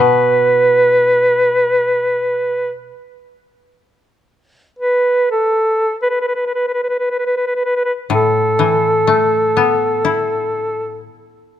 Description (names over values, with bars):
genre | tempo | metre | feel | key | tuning
japanese traditional, Japanese chamber music | free time | none | none | unclear | A4 = 440 Hz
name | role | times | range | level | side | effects
mellow duduk | melody | 0.0-11.0 s | A4 to B4 | -14 LUFS | right 1 dB | none
koto | accompaniment | 0.0-2.9, 8.1-11.6 s | A2 to E4 | -19 LUFS | left 7 dB | none
room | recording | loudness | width
light reverb | close, detailed microphones | -13 LUFS | side -11 dB against mid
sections
0.0-11.6 A section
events
none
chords
none